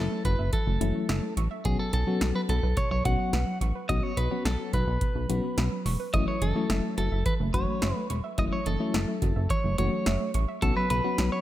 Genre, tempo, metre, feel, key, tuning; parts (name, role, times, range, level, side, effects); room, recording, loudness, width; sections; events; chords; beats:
synth-pop; 107 BPM; 4/4; straight; F# minor; A4 = 440 Hz
clean electric guitar; melody; 0.0-11.4 s; G#4 to F#5; -32 LUFS; equal; analog delay
FM electric piano with tremolo; accompaniment; 0.0-11.4 s; F#3 to F#4; -32 LUFS; left 6 dB; analog delay
soft round pluck; arpeggios; 0.0-11.4 s; B2 to C#6; -35 LUFS; right 5 dB; chorus, analog delay
chorused synth bass; bass; 0.0-11.3 s; E1 to B1; -27 LUFS; equal
electro analog drum machine; drums; 0.2-11.3 s; hi-hat, kick drum, snare drum; -31 LUFS; equal; analog delay
light reverb; echo-heavy mix; -25 LUFS; side -14 dB against mid
0.0-11.4 A section
0.0 F#m7; 1.7 Bsus2; 6.1 F#m7; 10.6 Bsus2
0.53 1.09 | 1.65 2.21 2.77 3.33 | 3.89 4.46 5.01 5.58 | 6.14 6.70 7.26 7.82 | 8.38 8.94 9.50 10.06 | 10.62 11.18